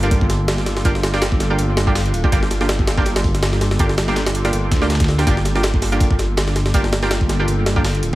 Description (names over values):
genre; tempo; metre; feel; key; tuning
drum and bass, jungle; 163 BPM; 4/4; swing 55% on 16ths; G minor; A4 = 439 Hz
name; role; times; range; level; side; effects
warbly tape-like pad; sustained chords; 0.0-8.2 s; Bb3 to A4; -26 LUFS; right 1 dB; chorus, built-in reverb
orchestra-hit-like synth stab; stabs; 0.0-8.2 s; Bb3 to G4; -23 LUFS; right 1 dB; built-in reverb, dub echo
dark detuned saw bass; bass; 0.0-8.1 s; D1 to D2; -20 LUFS; equal; none
dusty soul sampler-style drum kit; drums; 0.0-8.1 s; hi-hat, snare drum; -32 LUFS; equal; high-pass filter on snare, studio reverb, high-pass filter on hats, high-pass filter on room
jungle sampler-style drum kit; drums; 0.0-8.1 s; hi-hat, kick drum, snare drum; -19 LUFS; equal; studio reverb
room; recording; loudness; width
digital ambience; vinyl crackle; -15 LUFS; side -17 dB against mid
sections
0.0-8.2 A section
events
none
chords
0.0 Gm7